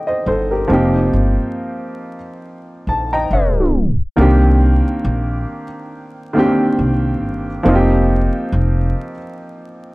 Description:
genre	lo-fi hip hop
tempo	69 BPM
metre	4/4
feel	swing 57% on 16ths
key	C dorian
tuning	A4 = 439 Hz
part	warm upright piano	accompaniment	0.0-9.9 s	Eb3 to Bb5	-17 LUFS	equal	none
part	upright bass	bass	0.3-8.9 s	F1 to C2	-16 LUFS	equal	none
room	moderate small room reverb, RT60 0.6 s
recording	vinyl crackle, tape stop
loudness	-14 LUFS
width	side -22 dB against mid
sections	0.0-4.2 A section; 4.2-9.9 B section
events	tape stop 3.3-4.2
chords	0.0 Cm7; 0.7 F9sus4; 4.2 Cm7; 7.7 F9sus4

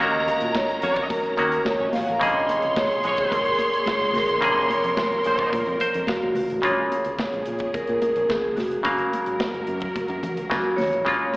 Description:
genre	disco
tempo	108 BPM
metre	4/4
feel	straight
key	Bb minor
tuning	A4 = 440 Hz
part	vibraphone with soft mallets	melody	0.0-11.4 s	Gb4 to F5	-25 LUFS	equal	slapback echo, tape echo
part	warm symphonic violin section	second line	0.0-6.3 s	Db4 to C6	-25 LUFS	equal	slapback echo
part	overdriven clav	accompaniment	0.0-11.4 s	C3 to F5	-26 LUFS	equal	slapback echo
part	clear studio string section	sustained chords	0.0-11.4 s	Bb2 to Bb4	-32 LUFS	equal	none
part	modern bright fingered electric bass	bass	0.0-11.2 s	F1 to Bb2	-33 LUFS	equal	none
part	modern studio drum kit	drums	0.3-11.4 s	hi-hat, kick drum, snare drum	-32 LUFS	equal	slapback echo
part	congas	percussion	0.3-11.4 s	none	-33 LUFS	left 1 dB	slapback echo
part	clear horn section	stabs	0.8-5.5 s	Ab3 to Db5	-26 LUFS	equal	slapback echo
room	light reverb, small room reverb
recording	live gig heard through the venue's PA, recital hall reverb, AM radio sound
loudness	-20 LUFS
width	side -23 dB against mid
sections	0.0-6.6 A section; 6.6-11.4 B section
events	clav fill 5.5-6.6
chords	0.0 Ebm7; 2.2 Bbm9; 6.6 Bbm7; 8.8 Gbmaj7

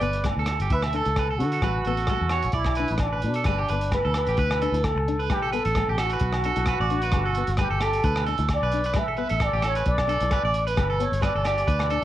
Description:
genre	highlife guitar band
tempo	131 BPM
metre	4/4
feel	swing 54% on 16ths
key	D major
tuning	A4 = 439 Hz
part	trumpet with plunger mute	melody	0.0-12.0 s	D4 to E5	-27 LUFS	equal	plate reverb
part	fingerpicked steel-string acoustic guitar	accompaniment	0.0-12.0 s	A3 to E4	-33 LUFS	left 7 dB	plate reverb
part	electric guitar at the edge of break-up	arpeggios	0.0-12.0 s	G4 to E5	-29 LUFS	right 7 dB	spring reverb, plate reverb
part	fingered electric bass	bass	0.0-12.0 s	G1 to D3	-27 LUFS	equal	none
part	crunchy breakbeat drum kit	drums	0.0-12.0 s	hi-hat, kick drum, rim click	-29 LUFS	equal	cassette tape
part	agogo bells	percussion	0.3-11.9 s	none	-33 LUFS	right 1 dB	none
room	light reverb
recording	home recording on cassette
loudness	-22 LUFS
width	side -13 dB against mid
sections	0.0-4.4 A section; 4.4-12.0 B section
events	none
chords	0.0 Gadd9; 0.7 Dsus2; 1.6 A5; 2.5 Bm; 3.5 Gadd9; 4.4 Dsus2; 5.3 Gmaj9/A; 6.2 Bm; 7.1 Gadd9; 8.0 Dsus2; 9.0 A5; 9.9 Bm; 10.8 Gadd9

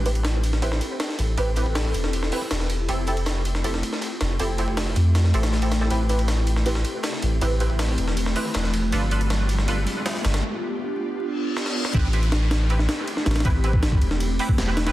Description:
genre	drum and bass, jungle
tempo	159 BPM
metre	4/4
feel	straight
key	A minor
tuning	A4 = 440 Hz
part	ethereal airy pad	sustained chords	0.0-14.9 s	A3 to A4	-29 LUFS	equal	ensemble chorus, built-in reverb, phaser
part	soft dub sub bass	bass	0.0-14.9 s	E1 to F2	-22 LUFS	equal	tube saturation
part	band-passed chord stab	stabs	0.1-14.9 s	C4 to B4	-30 LUFS	right 2 dB	ensemble chorus, dub echo
part	breakbeat sampler-style drum kit	drums	0.1-14.9 s	hi-hat, kick drum, ride cymbal, snare drum	-27 LUFS	equal	high-pass filter on cymbals, high-pass filter on kick, high-pass filter on snare, high-pass filter on hats, high-pass filter on room
part	crunchy breakbeat drum kit	drums	0.1-10.3 s	hi-hat, snare drum	-38 LUFS	left 1 dB	none
part	riser, reverse cymbal and downlifter	sound effects	7.1-14.9 s	none	-34 LUFS	equal	none
room	light reverb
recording	dense, heavily limited modern master, vinyl crackle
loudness	-21 LUFS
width	side -15 dB against mid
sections	0.0-11.9 A section; 11.9-14.9 B section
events	build-up 0.0-11.9; filter sweep on synth stab 0.0-11.9; riser 7.1-10.4; break 10.4-11.9; reverse cymbal 11.3-11.9; drum fill 11.6-11.9; drop 11.9-14.9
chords	0.0 Am7; 2.9 Fmaj9; 5.9 Am7; 8.9 G7; 11.9 Am7

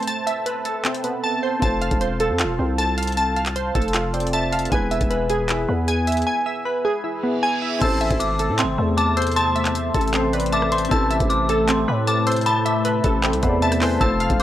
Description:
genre	hip hop, trap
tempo	155 BPM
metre	4/4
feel	half-time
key	A harmonic minor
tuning	A4 = 439 Hz
part	glassy digital keys	arpeggios	0.0-14.4 s	A3 to A5	-22 LUFS	equal	chorus, analog delay
part	trap drum kit	drums	0.0-14.4 s	crash cymbal, handclaps, hi-hat, kick drum, rim click	-25 LUFS	equal	none
part	dark concert grand piano	accompaniment	1.6-14.4 s	B3 to G#5	-29 LUFS	left 2 dB	none
part	growling 808-style bass	bass	1.6-14.4 s	E1 to A2	-24 LUFS	equal	none
part	reverse cymbal	sound effects	7.2-7.8 s	none	-31 LUFS	right 9 dB	none
part	dark detuned synth bell	second line	7.8-14.4 s	B5 to E6	-25 LUFS	left 1 dB	chorus, analog delay
part	warbly tape-like pad	sustained chords	8.5-14.4 s	C3 to A4	-29 LUFS	left 3 dB	chorus, built-in reverb
room	little or no reverb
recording	dry, gritty hardware recording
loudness	-18 LUFS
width	side -12 dB against mid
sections	0.0-7.8 A section; 7.8-14.4 B section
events	break 0.0-1.6; drums muted 1.2-1.6; reverse cymbal 7.2-7.8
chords	0.0 Amadd9; 1.6 F; 4.7 E; 7.8 Amadd9

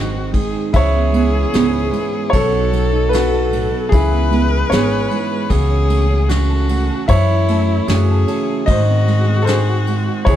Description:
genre	acoustic folk-pop ballad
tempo	76 BPM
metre	4/4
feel	straight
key	C# minor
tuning	A4 = 440 Hz
part	clear upright piano	melody	0.0-10.4 s	E4 to E5	-21 LUFS	equal	none
part	clear viola	second line	0.0-10.4 s	E4 to B4	-22 LUFS	left 3 dB	none
part	fingerpicked steel-string acoustic guitar	accompaniment	0.0-10.4 s	G#2 to B#4	-24 LUFS	right 6 dB	none
part	Celtic harp	arpeggios	0.0-10.4 s	D#3 to G#4	-23 LUFS	right 2 dB	none
part	upright bass	bass	0.0-10.4 s	G#1 to G#2	-17 LUFS	equal	none
part	soft brush drum kit	drums	0.3-10.4 s	kick drum, ride cymbal, snare drum	-23 LUFS	equal	none
room	light reverb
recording	dark, warm production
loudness	-13 LUFS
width	side -11 dB against mid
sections	0.0-10.4 A section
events	none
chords	0.0 G#; 0.7 C#m7; 2.3 B7; 3.9 C#m7; 5.5 A6/C#; 7.1 F#m7; 8.7 G#7

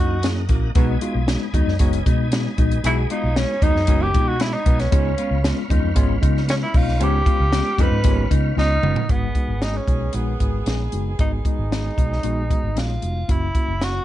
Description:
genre	uptempo 1960s-style soul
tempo	115 BPM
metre	4/4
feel	straight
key	unclear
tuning	A4 = 438 Hz
part	breathy tenor saxophone	melody	0.0-14.0 s	Cb4 to Cb5	-25 LUFS	right 1 dB	none
part	mellow tine electric piano	accompaniment	0.0-14.0 s	Ab3 to Ab4	-27 LUFS	left 3 dB	medium stereo tremolo
part	tonewheel organ	sustained chords	0.0-9.1 s	Bb4 to Ab5	-35 LUFS	right 1 dB	slow rotary speaker, chorus vibrato
part	electric guitar through a small old amp	riff	0.0-9.0 s	Bb3 to Ab4	-30 LUFS	left 6 dB	none
part	vintage muted fingered electric bass	bass	0.0-14.0 s	F1 to Db3	-22 LUFS	equal	none
part	compact cocktail drum kit	drums	0.2-13.9 s	hi-hat, kick drum, snare drum, toms	-21 LUFS	equal	none
part	warm baritone saxophone	riff	0.8-8.3 s	Eb2 to Cb3	-31 LUFS	right 7 dB	none
part	warm horn section	second line	9.1-13.0 s	Eb3 to Ab4	-35 LUFS	right 2 dB	none
room	little or no reverb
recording	nothing above 10.4 kHz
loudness	-17 LUFS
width	side -13 dB against mid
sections	0.0-9.1 A section; 9.1-14.0 B section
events	tenor saxophone solo 0.0-9.1; drum fill 8.6-9.1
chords	0.0 Gb7; 0.8 Cb6; 4.9 Db7; 9.1 Abm7; 13.3 Gb7

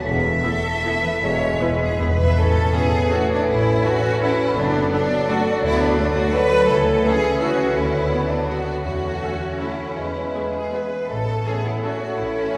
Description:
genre	classical, orchestral ballroom waltz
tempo	147-182 BPM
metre	3/4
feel	rubato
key	A major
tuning	A4 = 443 Hz
part	rich symphonic violin section	melody	0.0-11.9 s	E5 to F#5	-38 LUFS	equal	none
part	warm bassoon	accompaniment	0.0-12.6 s	E3 to A3	-28 LUFS	equal	none
part	concert harp	arpeggios	0.0-12.6 s	F#2 to E5	-30 LUFS	equal	none
part	warm tuba	bass	0.0-1.5 s	E1	-34 LUFS	equal	none
part	mellow silver concert flute	second line	0.1-12.6 s	B4 to B6	-31 LUFS	equal	none
part	rich studio cello section	bass	0.1-12.6 s	E2 to C#4	-31 LUFS	equal	none
part	rich symphonic double bass section	bass	0.1-12.5 s	E1 to E2	-30 LUFS	equal	none
part	clear symphonic violin section	second line	0.4-12.6 s	D4 to E5	-26 LUFS	equal	none
part	rich symphonic viola section	accompaniment	0.4-12.6 s	B3 to A4	-35 LUFS	equal	none
part	warm French horn section	sustained chords	0.4-12.6 s	E3 to D4	-36 LUFS	equal	none
part	timpani	percussion	1.2-2.3, 8.8-9.4 s	E2	-26 LUFS	equal	none
room	wet church reverb, RT60 3.1 s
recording	none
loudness	-20 LUFS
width	mono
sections	0.0-2.4 A section; 2.4-12.6 B section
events	timpani fill 1.2-2.4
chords	0.1 Esus4; 1.2 E; 2.4 A; 4.6 D/F#; 5.6 D; 6.7 A/C#; 7.8 Bm/D; 8.8 A/E; 10.0 E; 11.1 A

